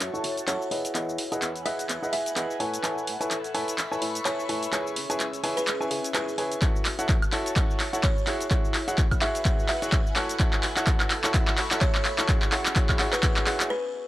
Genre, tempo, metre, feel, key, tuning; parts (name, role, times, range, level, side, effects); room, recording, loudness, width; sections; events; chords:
piano house; 127 BPM; 4/4; swing 57% on 16ths; E major; A4 = 440 Hz
organ-like FM bass; bass; 0.0-13.6 s; E1 to C#3; -41 LUFS; equal; sidechain pumping, high-pass filter
punchy analog drum machine; drums; 0.0-13.7 s; cabasa, handclaps, hi-hat, woodblock; -28 LUFS; equal
airy breathy pad; texture; 0.0-13.7 s; C#4 to C#6; -36 LUFS; equal; chorus, phaser, sidechain pumping
clear upright piano; riff; 0.1-13.7 s; E4 to G#5; -30 LUFS; equal; sidechain pumping, low-pass filter
buzzing kalimba; melody; 0.5-14.1 s; B4 to E5; -33 LUFS; equal
electronic kick drum; drums; 6.6-13.3 s; -24 LUFS; equal
little or no reverb; dry, gritty hardware recording, transformer saturation, cassette tape; -23 LUFS; side -16 dB against mid
0.0-14.1 A section
build-up 0.0-14.1; drum fill 0.0-13.7; filter sweep on upright piano 0.0-14.1; break 13.7-14.1
0.0 F#m7; 0.7 Emaj9; 2.6 Amaj9; 4.7 C#m7; 6.6 F#m7; 8.3 Eadd9; 10.2 Amaj9; 12.3 C#m7